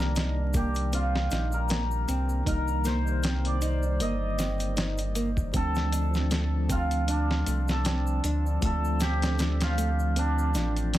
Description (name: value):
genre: trip hop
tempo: 78 BPM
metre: 4/4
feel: swing 56% on 16ths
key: C dorian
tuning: A4 = 440 Hz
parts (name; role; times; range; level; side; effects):
- hammered dulcimer; melody; 0.0-11.0 s; D4 to Eb5; -32 LUFS; right 1 dB; tape echo
- mellow tine electric piano; accompaniment; 0.0-11.0 s; Eb3 to D5; -34 LUFS; equal; medium stereo tremolo
- nylon-string guitar; arpeggios; 0.0-11.0 s; A3 to Eb4; -36 LUFS; right 1 dB; tape echo
- warm sub bass; bass; 0.0-11.0 s; G1 to D2; -27 LUFS; equal; none
- dusty soul sampler-style drum kit; drums; 0.0-11.0 s; hi-hat, kick drum, snare drum; -30 LUFS; equal; small room ambience
- egg shaker; percussion; 0.2-11.0 s; none; -45 LUFS; left 1 dB; none
room: studio ambience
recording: dense, heavily limited modern master, vinyl crackle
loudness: -24 LUFS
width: side -14 dB against mid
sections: 0.0-11.0 A section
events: none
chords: 0.0 Cm7; 5.5 Dm7